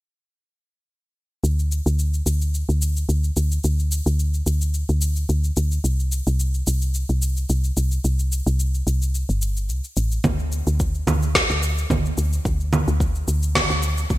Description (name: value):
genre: organic downtempo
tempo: 109 BPM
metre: 4/4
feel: swing 54% on 16ths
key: unclear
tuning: A4 = 441 Hz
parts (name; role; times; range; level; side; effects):
- woody FM bass; bass; 1.4-14.2 s; G1 to D2; -20 LUFS; equal; sidechain pumping
- electronic shaker, congas and snare drum; drums; 1.4-14.2 s; none; -25 LUFS; right 1 dB; small room ambience, gated reverb
- electronic kick drum; drums; 10.2-14.2 s; none; -24 LUFS; equal; small room ambience
room: digital ambience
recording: bright 1980s-style digital production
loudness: -19 LUFS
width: side -17 dB against mid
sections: 1.4-14.2 A section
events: none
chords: none